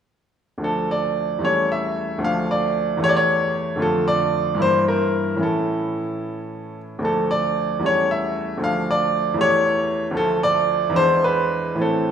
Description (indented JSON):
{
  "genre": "classical, baroque-style suite movement for grand piano",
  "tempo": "75 BPM (dotted quarters)",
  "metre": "6/8",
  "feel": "uneven beats, rubato",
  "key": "D minor",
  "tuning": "A4 = 441 Hz",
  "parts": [
    { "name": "clear baby grand piano", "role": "solo", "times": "0.6-12.1 s", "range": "D2 to F5", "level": "-18 LUFS", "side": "equal", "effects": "none" }
  ],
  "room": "wet recital hall reverb, RT60 1.7 s",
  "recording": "heard from further back in the room",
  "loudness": "-18 LUFS",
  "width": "side -8 dB against mid",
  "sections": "0.6-12.1 A section",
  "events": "none",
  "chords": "0.6 Dm; 1.4 A7/E; 2.2 Dm; 3.0 A7/E; 3.8 Dm/F; 4.6 Edim/G; 5.4 A; 7.0 Dm; 7.8 A7/E; 8.6 Dm; 9.4 A7/E; 10.2 Dm; 11.0 E7",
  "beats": "| 0.64 1.45 | 2.24 3.02 | 3.80 4.59 | 5.41 6.22 | 7.04 7.84 | 8.62 9.39 | 10.16 10.96 | 11.80"
}